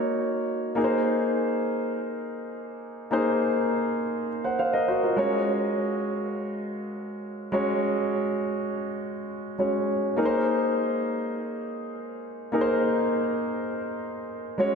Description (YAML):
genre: pop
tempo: 102 BPM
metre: 4/4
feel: straight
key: Ab mixolydian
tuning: A4 = 439 Hz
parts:
  - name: warm concert grand piano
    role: solo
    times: 0.0-14.8 s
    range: Ab3 to Gb5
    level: -25 LUFS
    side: equal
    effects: diffuse ambient delay
room: wet lush hall reverb, RT60 2.5 s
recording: dreamy mix soaked in reverb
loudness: -24 LUFS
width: side -5 dB against mid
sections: 0.8-14.8 A section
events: none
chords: 0.0 Gb6; 0.8 Abadd9; 5.2 Gbsus2/Ab; 10.2 Abadd9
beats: 0.18 | 0.77 1.35 1.94 2.53 | 3.12 3.71 4.30 4.88 | 5.47 6.06 6.65 7.24 | 7.83 8.41 9.00 9.59 | 10.18 10.77 11.36 11.94 | 12.53 13.12 13.71 14.30